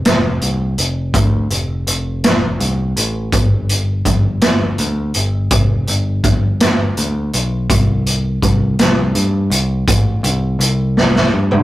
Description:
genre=quiet-loud alternative rock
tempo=55 BPM (dotted quarters)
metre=6/8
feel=straight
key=G mixolydian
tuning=A4 = 439 Hz
part: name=raw garage drum kit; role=drums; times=0.0-11.6 s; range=hi-hat, kick drum, snare drum, toms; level=-14 LUFS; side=equal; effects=none
part: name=picked electric bass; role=bass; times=0.1-11.6 s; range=F1 to G2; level=-18 LUFS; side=equal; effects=none
room=light reverb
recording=rough rehearsal-room recording, tube saturation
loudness=-13 LUFS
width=side -15 dB against mid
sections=0.0-11.6 A section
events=drum fill 11.0-11.6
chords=none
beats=0.05 | 1.14 2.23 | 3.33 4.42 | 5.51 6.60 | 7.70 8.79 | 9.88 10.96

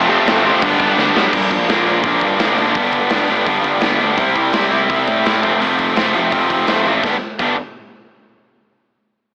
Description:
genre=punk rock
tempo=168 BPM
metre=4/4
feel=straight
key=unclear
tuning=A4 = 440 Hz
part: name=distorted electric guitar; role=riff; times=0.0-7.6 s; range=F2 to E4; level=-17 LUFS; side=equal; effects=overdrive
part: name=thick fuzz guitar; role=riff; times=0.0-1.3 s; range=F2 to D4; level=-21 LUFS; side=equal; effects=distortion
part: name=fuzz picked electric bass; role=bass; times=0.0-7.6 s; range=F1 to A2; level=-24 LUFS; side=equal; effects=overdrive
part: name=big rock drum kit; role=drums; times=0.3-7.5 s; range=crash cymbal, hi-hat, kick drum, snare drum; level=-24 LUFS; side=equal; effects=none
room=light reverb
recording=AM radio sound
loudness=-16 LUFS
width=mono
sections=0.0-1.3 A section; 1.3-7.0 B section; 7.0-8.5 C section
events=drum fill 1.0-1.3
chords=0.0 F; 0.6 G; 1.3 Bb; 2.8 G; 4.2 C; 5.4 F; 7.0 G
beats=0.27 0.62 0.98 | 1.33 1.69 2.04 2.40 | 2.76 3.11 3.47 3.83 | 4.18 4.54 4.90 5.25 | 5.61 5.97 6.33 6.68 | 7.04 7.40

